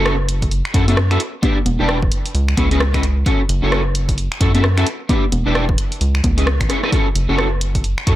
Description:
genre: UK garage, two-step garage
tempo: 131 BPM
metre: 4/4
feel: swing 60% on 16ths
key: F# minor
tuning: A4 = 439 Hz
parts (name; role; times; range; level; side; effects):
- electric guitar at the edge of break-up; stabs; 0.0-8.2 s; C#4 to E5; -21 LUFS; left 1 dB; ensemble chorus, dub echo
- rubbery square bass; bass; 0.0-8.2 s; E1 to F#2; -17 LUFS; equal; none
- punchy analog drum machine; drums; 0.1-8.2 s; congas, finger snaps, hi-hat, rim click; -22 LUFS; equal; none
- electronic kick drum; drums; 0.4-8.2 s; none; -19 LUFS; equal; none
room: little or no reverb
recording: none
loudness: -15 LUFS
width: side -14 dB against mid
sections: 0.0-8.2 A section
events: drum fill 6.7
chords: 0.0 F#m7; 1.2 Em7; 2.1 C#m7; 3.3 F#m7; 4.9 Em7; 5.8 C#m7; 6.9 F#m7

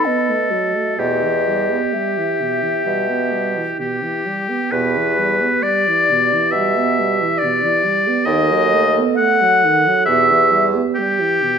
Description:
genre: classical, slow romantic movement for wind quintet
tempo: 62-71 BPM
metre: 4/4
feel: rubato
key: E minor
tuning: A4 = 440 Hz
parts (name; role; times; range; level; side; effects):
- mellow hollow silver concert flute; melody; 0.0-11.6 s; G4 to F#5; -23 LUFS; left 6 dB; none
- bright oboe; second line; 0.0-11.6 s; G4 to F#5; -17 LUFS; left 1 dB; none
- mellow French horn; accompaniment; 0.0-11.6 s; B2 to B3; -23 LUFS; right 4 dB; none
- mellow clarinet; accompaniment; 0.0-11.6 s; F#4 to B4; -24 LUFS; right 10 dB; none
- clear bassoon; bass; 1.0-10.8 s; D#2 to B2; -23 LUFS; right 3 dB; none
room: moderate recital hall reverb, RT60 1.6 s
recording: minimal, uncompressed stereo recording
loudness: -14 LUFS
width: side -7 dB against mid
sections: 0.0-4.7 A section; 4.7-11.6 B section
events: none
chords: 0.0 B7; 1.0 Em; 8.3 B7/D#; 10.1 Em

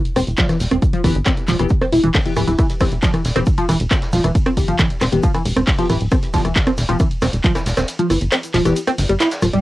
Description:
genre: driving peak-time techno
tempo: 136 BPM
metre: 4/4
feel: straight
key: E phrygian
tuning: A4 = 440 Hz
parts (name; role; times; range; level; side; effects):
- tight sequenced synth; riff; 0.0-9.6 s; D3 to E4; -19 LUFS; equal; chorus, sidechain pumping, cassette tape, analog delay
- punchy analog drum machine; drums; 0.1-9.6 s; handclaps, hi-hat, ride cymbal, rim click; -23 LUFS; equal; cassette tape, sidechain pumping on hats, sidechain pumping on cymbals
- tight sequencer bass; bass; 0.2-9.6 s; D1 to G1; -21 LUFS; equal; sidechain pumping
- vintage brush drum kit; drums; 0.2-9.5 s; hi-hat, shaker, snare drum; -32 LUFS; equal; sidechain pumping on hats, high-pass filter on hats, cassette tape, high-pass filter on snare, sidechain pumping on perc, high-pass filter on perc, high-pass filter on room
- electronic kick drum; drums; 0.4-7.5 s; none; -18 LUFS; equal; overdrive, cassette tape
- wavetable chord stab; stabs; 1.0-8.8 s; E3 to G4; -25 LUFS; left 5 dB; cassette tape, sidechain pumping, analog delay
room: wet booth ambience, RT60 0.2 s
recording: home recording on cassette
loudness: -15 LUFS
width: side -17 dB against mid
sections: 0.0-9.6 A section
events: kick drops out 7.9-9.6; band accent 9.2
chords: 0.0 Em

